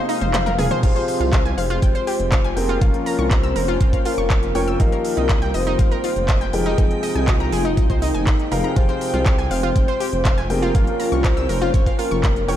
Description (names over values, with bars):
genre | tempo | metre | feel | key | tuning
progressive house | 121 BPM | 4/4 | straight | F minor | A4 = 440 Hz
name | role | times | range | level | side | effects
warm analog pad | sustained chords | 0.0-12.6 s | C3 to F4 | -29 LUFS | right 2 dB | chorus, phaser, sidechain pumping
analog pluck | arpeggios | 0.0-12.5 s | Eb4 to E6 | -27 LUFS | equal | chorus, sidechain pumping, ping-pong delay
dark baby grand piano | stabs | 0.0-12.6 s | F3 to G5 | -27 LUFS | left 3 dB | sidechain pumping, ping-pong delay
soft octave-layered synth lead | melody | 0.1-12.6 s | Eb4 to F5 | -24 LUFS | left 1 dB | chorus, vintage 12-bit sampler grit, ping-pong delay
pop drum kit | drums | 0.1-12.6 s | crash cymbal, handclaps, hi-hat, toms | -28 LUFS | equal | studio reverb
dark detuned saw bass | bass | 0.2-12.6 s | Eb1 to C2 | -24 LUFS | equal | sidechain pumping
electronic kick drum | drums | 0.8-12.3 s | none | -18 LUFS | equal | studio reverb
backwards swelling texture | texture | 2.0-12.6 s | G5 | -36 LUFS | right 3 dB | built-in reverb, sidechain pumping
room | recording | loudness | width
light reverb | none | -16 LUFS | side -11 dB against mid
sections
0.0-12.6 A section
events
break 0.0-0.8; drum fill 0.0-0.8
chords
0.0 Abadd9/F; 0.8 Fmadd9; 2.8 Bbm/F; 4.8 Ebadd9/F; 6.8 Abadd9/F; 8.8 Fmadd9; 10.7 Bbm/F